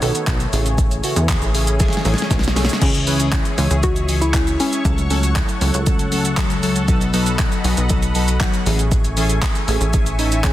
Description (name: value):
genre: dance-pop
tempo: 118 BPM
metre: 4/4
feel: straight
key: C# minor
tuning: A4 = 440 Hz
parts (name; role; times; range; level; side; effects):
- glassy digital keys; accompaniment; 0.0-10.5 s; C#3 to B4; -23 LUFS; equal; chorus, phaser, sidechain pumping
- sweeping resonant pad; sustained chords; 0.0-10.5 s; D#3 to C#6; -27 LUFS; left 2 dB; chorus, sidechain pumping
- plucky analog bass; bass; 0.0-10.5 s; A1 to E2; -20 LUFS; equal; sidechain pumping
- deep house drum kit; drums; 0.0-10.5 s; crash cymbal, handclaps, hi-hat, kick drum, shaker, snare drum; -19 LUFS; equal; none
- soft round pluck; melody; 2.8-6.6 s; C#4 to F#4; -24 LUFS; left 2 dB; chorus, tape echo
room: light reverb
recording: dense, heavily limited modern master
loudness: -15 LUFS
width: side -14 dB against mid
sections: 0.0-2.8 A section; 2.8-10.5 B section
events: drum fill 1.8-2.8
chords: 0.0 B7; 0.5 Amaj7; 2.8 C#m; 4.8 F#m/C#; 6.9 B7; 8.7 Amaj7